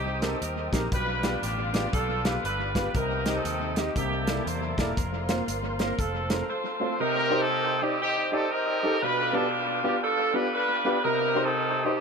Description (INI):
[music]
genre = uptempo gospel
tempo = 118 BPM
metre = 4/4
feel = swing 62% on 8ths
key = unclear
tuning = A4 = 440 Hz
[part]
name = warm horn section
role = melody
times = 0.0-12.0 s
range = Bb3 to C5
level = -27 LUFS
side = right 1 dB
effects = analog delay
[part]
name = rich chamber string section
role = sustained chords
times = 0.0-7.0 s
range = F3 to G4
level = -39 LUFS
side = left 2 dB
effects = none
[part]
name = tonewheel organ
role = sustained chords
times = 0.0-12.0 s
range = A4 to Eb6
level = -36 LUFS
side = right 1 dB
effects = slow rotary speaker, overdrive, chorus vibrato
[part]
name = fingered electric bass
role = bass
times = 0.0-6.4 s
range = E1 to E2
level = -33 LUFS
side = left 1 dB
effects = none
[part]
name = clear baby grand piano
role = accompaniment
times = 0.2-12.0 s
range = B2 to F5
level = -30 LUFS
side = equal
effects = analog delay
[part]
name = natural country drum kit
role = drums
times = 0.2-6.4 s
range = hi-hat, kick drum, snare drum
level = -31 LUFS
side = equal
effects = analog delay
[sound]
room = moderate spring reverb, RT60 1.9 s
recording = echo-heavy mix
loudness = -24 LUFS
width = side -5 dB against mid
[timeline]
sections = 0.0-7.0 A section; 7.0-12.0 B section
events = none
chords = 0.0 Cm; 0.9 G7; 2.9 Cm; 4.0 C13; 5.0 Fsus4; 6.0 F; 7.0 Cm; 9.0 G7/B; 11.0 Cm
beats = 0.41 | 0.92 1.43 1.93 2.44 | 2.95 3.45 3.96 4.47 | 4.97 5.48 5.99 6.49 | 7.00 7.50 8.01 8.51 | 9.02 9.52 10.03 10.53 | 11.04 11.54